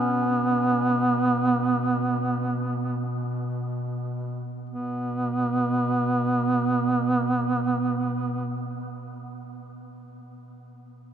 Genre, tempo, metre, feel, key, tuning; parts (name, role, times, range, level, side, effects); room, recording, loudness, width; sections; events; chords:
caucasian folk, Caucasian lament; free time; A4 = 437 Hz
mellow duduk; melody; 0.0-8.8 s; B3; -24 LUFS; right 2 dB
mellow duduk; drone; 0.0-8.8 s; B2; -30 LUFS; left 1 dB
wet cathedral reverb, RT60 7.0 s; minimal, uncompressed stereo recording; -23 LUFS; side -9 dB against mid
0.0-4.7 A section; 4.7-10.4 B section
slowing down 0.0-4.7